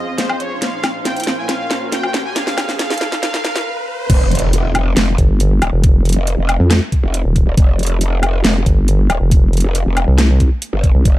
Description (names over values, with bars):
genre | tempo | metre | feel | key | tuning
heavy wobble dubstep | 138 BPM | 4/4 | half-time | F minor | A4 = 438 Hz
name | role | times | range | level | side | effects
soft supersaw | melody | 0.0-3.6 s | C5 to Ab5 | -24 LUFS | right 1 dB | dub echo
rich studio string section | sustained chords | 0.0-3.6 s | F2 to C5 | -31 LUFS | left 1 dB | sidechain pumping, low-pass filter
riser and impact | sound effects | 0.1-5.8 s | none | -24 LUFS | right 1 dB | none
warbly tape-like pad | texture | 0.0-3.7 s | C4 to C6 | -30 LUFS | right 1 dB | chorus, built-in reverb, sidechain pumping
dubstep drum kit | drums | 0.2-11.1 s | crash cymbal, hi-hat, snare drum, woodblock | -19 LUFS | equal | none
growl bass | bass | 4.1-11.2 s | Eb1 to G1 | -16 LUFS | equal | chorus, overdrive
electronic kick drum | drums | 4.1-11.1 s | none | -12 LUFS | equal | none
vowel-sweep wobble bass | bass | 5.2-11.0 s | Eb1 to F2 | -12 LUFS | equal | chorus, overdrive
room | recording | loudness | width
little or no reverb | dark, warm production, high-pass filter | -13 LUFS | side -16 dB against mid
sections
0.0-4.1 A section; 4.1-11.2 B section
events
build-up 0.0-4.1; drum fill 0.0-3.7; riser 0.1-4.1; stop 3.7-4.1; drop 4.1-11.2; impact 4.1-5.8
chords
0.0 Fm; 0.6 Bbmadd9; 4.1 Fsus2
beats
0.18 | 0.62 1.05 1.49 1.92 | 2.36 2.79 3.23 3.66 | 4.10 4.53 4.97 5.40 | 5.84 6.27 6.71 7.14 | 7.58 8.01 8.45 8.88 | 9.31 9.75 10.18 10.62 | 11.05